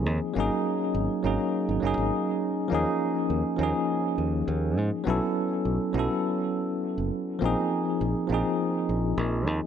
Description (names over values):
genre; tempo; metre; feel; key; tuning
sunset chillout; 102 BPM; 4/4; straight; unclear; A4 = 440 Hz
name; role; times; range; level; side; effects
bell-like tine electric piano; accompaniment; 0.0-9.7 s; F3 to A4; -26 LUFS; equal; auto-pan, tape echo
fingered electric bass; bass; 0.0-9.6 s; Gb1 to Ab2; -28 LUFS; equal; none
room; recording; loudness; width
moderate lush hall reverb, RT60 2.1 s; none; -24 LUFS; side -8 dB against mid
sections
0.0-9.7 A section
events
none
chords
0.4 Ab9sus4; 2.7 Eb9sus4; 5.1 B9sus4; 7.4 Bb9sus4